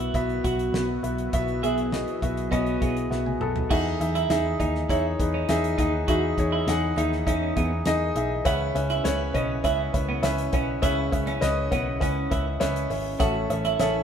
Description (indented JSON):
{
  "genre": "piano-driven pop",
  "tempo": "101 BPM",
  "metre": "4/4",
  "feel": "straight",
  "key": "E major",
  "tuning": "A4 = 440 Hz",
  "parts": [
    { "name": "warm grand piano", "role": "accompaniment", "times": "0.0-14.0 s", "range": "A2 to A5", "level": "-26 LUFS", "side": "left 1 dB", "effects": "none" },
    { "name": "lush unison pad", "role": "sustained chords", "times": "0.0-14.0 s", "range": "C#3 to G#4", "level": "-36 LUFS", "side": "equal", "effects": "none" },
    { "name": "twelve-string electric guitar", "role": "riff", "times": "0.0-13.9 s", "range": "B3 to F#4", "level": "-30 LUFS", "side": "right 5 dB", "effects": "none" },
    { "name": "vintage muted picked electric bass", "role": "bass", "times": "0.0-14.0 s", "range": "G#1 to E2", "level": "-29 LUFS", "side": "equal", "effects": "none" },
    { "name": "damped 70s drum kit", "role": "drums", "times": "0.0-13.9 s", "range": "crash cymbal, hi-hat, kick drum, snare drum, toms", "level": "-30 LUFS", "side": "equal", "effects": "none" }
  ],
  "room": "moderate stone room reverb, RT60 1.2 s",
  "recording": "band playing live in one room",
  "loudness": "-22 LUFS",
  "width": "side -8 dB against mid",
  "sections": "0.0-3.7 A section; 3.7-14.0 B section",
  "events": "grand piano fill 2.5-3.7; drum fill 3.1-3.7",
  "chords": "0.0 Bsus4; 3.7 Emaj7; 8.5 C#m7; 13.2 A",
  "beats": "0.14 0.74 | 1.33 1.93 2.52 3.11 | 3.71 4.30 4.89 5.49 | 6.08 6.67 7.27 7.86 | 8.46 9.05 9.64 10.24 | 10.83 11.42 12.02 12.61 | 13.21 13.80"
}